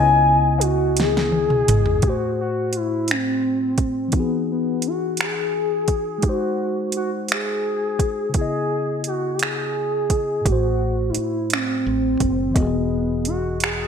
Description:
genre	slow six-eight R&B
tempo	57 BPM (dotted quarters)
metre	6/8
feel	straight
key	unclear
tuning	A4 = 441 Hz
part	gliding portamento lead	melody	0.0-13.9 s	B3 to G#5	-21 LUFS	left 1 dB	chorus, phaser, ping-pong delay
part	mellow tine electric piano	accompaniment	0.0-13.9 s	A2 to D#5	-26 LUFS	left 3 dB	none
part	woody fretless electric bass	bass	0.0-2.0, 10.5-13.9 s	E1 to C#2	-24 LUFS	right 1 dB	none
part	smooth R&B drum kit	drums	0.6-13.8 s	finger snaps, hi-hat, kick drum, snare drum, toms	-22 LUFS	right 1 dB	overdrive, gated reverb
room	moderate lush hall reverb, RT60 1.8 s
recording	bright 1980s-style digital production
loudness	-19 LUFS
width	side -7 dB against mid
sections	0.0-2.0 A section; 2.0-13.9 B section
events	drum fill 1.0-2.0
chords	0.0 C#m9; 2.0 Am6; 4.1 Emaj9; 6.2 G#7; 8.3 C#m9; 10.4 Am6; 12.6 Emaj9

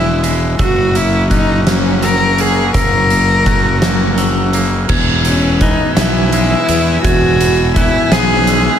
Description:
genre	post-rock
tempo	56 BPM (dotted quarters)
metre	6/8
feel	straight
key	E lydian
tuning	A4 = 441 Hz
part	warm cello	melody	0.0-8.8 s	C#4 to A#4	-15 LUFS	equal	analog delay
part	rich chamber string section	sustained chords	0.0-8.8 s	G#4 to E6	-26 LUFS	left 4 dB	none
part	glockenspiel with rubber mallets	arpeggios	0.0-8.8 s	E6 to G#6	-24 LUFS	right 2 dB	analog delay
part	twangy electric guitar	arpeggios	0.0-8.8 s	E2 to C#4	-21 LUFS	left 2 dB	analog delay
part	fuzz fingered electric bass	bass	0.0-8.7 s	E1 to E2	-16 LUFS	equal	overdrive
part	oversized low-tuned drum kit	drums	0.2-8.6 s	crash cymbal, hi-hat, kick drum, snare drum	-16 LUFS	equal	none
room	light reverb, studio ambience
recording	none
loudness	-10 LUFS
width	side -9 dB against mid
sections	0.0-4.9 A section; 4.9-8.8 B section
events	none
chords	0.0 E; 0.6 F#; 4.9 E

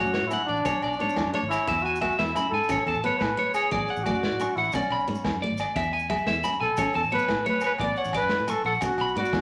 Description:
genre	highlife guitar band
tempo	118 BPM (dotted quarters)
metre	12/8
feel	straight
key	A major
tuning	A4 = 439 Hz
part	breathy trumpet	melody	0.0-9.4 s	C#4 to D5	-30 LUFS	equal	none
part	picked steel-string acoustic guitar	accompaniment	0.0-9.4 s	G#3 to C#5	-37 LUFS	equal	none
part	electric guitar at the edge of break-up	arpeggios	0.0-9.3 s	C#5 to C#6	-30 LUFS	equal	spring reverb
part	fingered electric bass	bass	0.0-9.4 s	G#1 to A2	-37 LUFS	equal	none
part	crunchy breakbeat drum kit	drums	0.1-9.4 s	hi-hat, kick drum, snare drum	-37 LUFS	equal	none
part	maracas	percussion	0.1-9.4 s	none	-52 LUFS	equal	none
part	agogo bells	percussion	0.3-9.4 s	none	-35 LUFS	equal	none
room	moderate large studio reverb, RT60 0.9 s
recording	none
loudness	-26 LUFS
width	mono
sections	0.0-9.4 A section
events	none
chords	0.0 Dmaj7; 0.7 Bmadd9; 1.7 E; 2.7 Aadd9; 3.7 Dmaj7/A; 4.7 Bmadd9; 5.8 E; 6.8 Aadd9; 7.8 Dmaj7/A; 8.8 Bmadd9

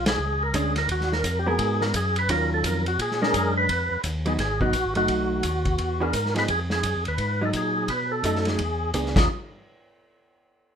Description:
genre	soul jazz organ trio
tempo	172 BPM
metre	4/4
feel	swing 63% on 8ths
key	unclear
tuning	A4 = 440 Hz
part	percussive tonewheel organ	melody	0.0-9.3 s	Eb4 to Cb5	-25 LUFS	equal	overdrive, chorus vibrato, slow rotary speaker
part	tonewheel organ	bass	0.0-9.3 s	Gb1 to B2	-28 LUFS	equal	overdrive, chorus vibrato, slow rotary speaker
part	vintage drum kit	drums	0.1-9.2 s	crash cymbal, hi-hat, kick drum, ride cymbal, snare drum	-28 LUFS	equal	none
part	vintage hollow-body jazz guitar	accompaniment	0.5-9.3 s	Eb3 to Bb4	-28 LUFS	right 1 dB	none
room	moderate studio reverb, RT60 0.6 s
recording	minimal, uncompressed stereo recording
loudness	-22 LUFS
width	side -8 dB against mid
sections	0.0-3.7 A section; 3.7-9.3 B section; 9.3-10.7 C section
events	band accent 0.0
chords	0.0 Bb7#9; 0.9 Ebmadd9; 1.6 Abm9; 2.3 Ebm9; 3.0 Bb7#9; 3.7 Abm6 (rootless); 4.4 Abm7; 5.1 B7; 5.8 E7; 6.5 Abm6; 7.2 Ab5; 7.9 B7; 8.6 E7; 9.1 Ebm9; 9.3 N.C.

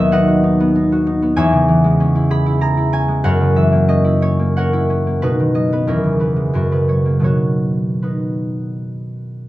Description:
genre	classical, solo harp piece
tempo	78-97 BPM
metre	3/4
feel	rubato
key	B major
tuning	A4 = 439 Hz
part	concert harp	solo	0.0-9.5 s	D#2 to B5	-14 LUFS	equal	none
room	moderate large studio reverb, RT60 1.1 s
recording	none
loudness	-13 LUFS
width	side -16 dB against mid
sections	0.0-9.5 A section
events	none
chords	0.0 B/D#; 1.4 C#m/E; 3.2 F#7; 5.2 B; 5.8 C#m/E; 6.5 F#; 7.3 B

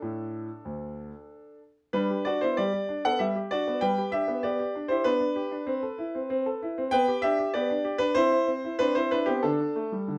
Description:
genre	classical-period piano sonatina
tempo	96 BPM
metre	4/4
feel	rubato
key	G major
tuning	A4 = 442 Hz
part	clear concert grand piano	solo	0.0-10.2 s	D2 to G5	-28 LUFS	equal	none
room	light reverb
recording	none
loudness	-27 LUFS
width	mono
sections	0.0-10.2 A section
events	none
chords	0.0 D5; 1.9 G; 4.4 G/B; 5.7 Am/C; 6.9 G/B; 8.2 Cmaj9; 9.4 Dsus4

